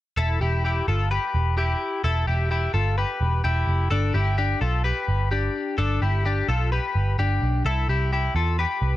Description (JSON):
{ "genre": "jangly indie pop", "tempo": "128 BPM", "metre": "4/4", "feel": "straight", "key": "unclear", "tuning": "A4 = 440 Hz", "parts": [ { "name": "twelve-string electric guitar", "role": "arpeggios", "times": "0.2-9.0 s", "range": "D4 to B4", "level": "-25 LUFS", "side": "left 3 dB", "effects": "ping-pong delay" }, { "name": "vintage muted picked electric bass", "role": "bass", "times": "0.2-9.0 s", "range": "E1 to E2", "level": "-22 LUFS", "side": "right 1 dB", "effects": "none" } ], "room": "light reverb", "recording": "none", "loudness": "-21 LUFS", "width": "side -15 dB against mid", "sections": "0.2-9.0 A section", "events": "none", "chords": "0.2 Em; 3.9 G; 7.6 Cmaj7" }